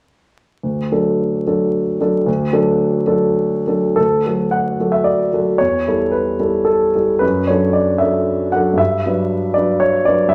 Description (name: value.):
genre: classical, romantic character piece for solo piano.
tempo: 92-122 BPM.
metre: 3/4.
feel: rubato.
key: D major.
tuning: A4 = 440 Hz.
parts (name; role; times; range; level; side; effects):
warm grand piano; solo; 0.6-10.3 s; D2 to F#5; -16 LUFS; equal; none.
room: moderate large studio reverb, RT60 0.9 s.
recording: vinyl crackle.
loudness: -17 LUFS.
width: mono.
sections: 0.6-4.0 A section; 4.0-10.3 B section.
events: none.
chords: 0.6 D; 5.6 A7/E; 7.2 D/F#; 8.8 Gmaj7.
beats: | 0.63 1.19 1.74 | 2.28 2.79 3.35 | 3.97 4.52 5.06 | 5.59 6.13 6.67 | 7.22 7.76 8.28 | 8.79 9.31 9.82 | 10.32.